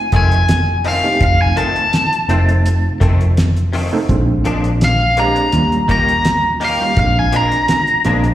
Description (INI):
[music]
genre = straight-eighth soul blues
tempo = 83 BPM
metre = 4/4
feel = straight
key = unclear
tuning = A4 = 442 Hz
[part]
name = biting overdriven guitar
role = melody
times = 0.0-8.3 s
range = F5 to Bb5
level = -16 LUFS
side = left 1 dB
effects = slapback echo, digital delay
[part]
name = overdriven reed electric piano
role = accompaniment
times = 0.0-8.3 s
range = G3 to A4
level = -22 LUFS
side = right 3 dB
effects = fast tremolo, slapback echo
[part]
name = direct-recorded clean electric guitar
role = stabs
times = 0.1-8.3 s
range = F2 to G4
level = -24 LUFS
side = left 4 dB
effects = ensemble chorus, slapback echo
[part]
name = vintage muted fingered electric bass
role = bass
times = 0.1-8.3 s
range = F1 to Eb2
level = -15 LUFS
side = equal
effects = none
[part]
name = cloth-damped thuddy drum kit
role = drums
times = 0.1-8.3 s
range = hi-hat, kick drum, snare drum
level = -20 LUFS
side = equal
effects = slapback echo
[sound]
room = light reverb, studio ambience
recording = live gig heard through the venue's PA, recital hall reverb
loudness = -12 LUFS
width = side -13 dB against mid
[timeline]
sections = 0.0-8.3 A section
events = none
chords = 0.0 F7; 4.1 Bb7; 5.5 Eb7; 7.0 Bb7